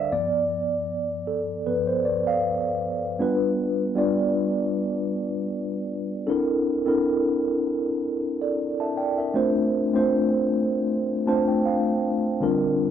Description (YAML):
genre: soul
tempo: 78 BPM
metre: 4/4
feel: swing 54% on 16ths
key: unclear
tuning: A4 = 439 Hz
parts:
  - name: mellow tine electric piano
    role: solo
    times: 0.0-12.9 s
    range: G2 to A5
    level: -22 LUFS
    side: equal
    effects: medium stereo tremolo
room: wet studio reverb, RT60 0.6 s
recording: band playing live in one room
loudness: -22 LUFS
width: side -9 dB against mid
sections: 0.0-3.2 A section; 3.2-6.3 B section; 6.3-12.9 C section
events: tine electric piano solo 0.0-3.2; tine electric piano fill 10.9-12.4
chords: 0.1 G7; 6.3 C13; 9.4 Dm7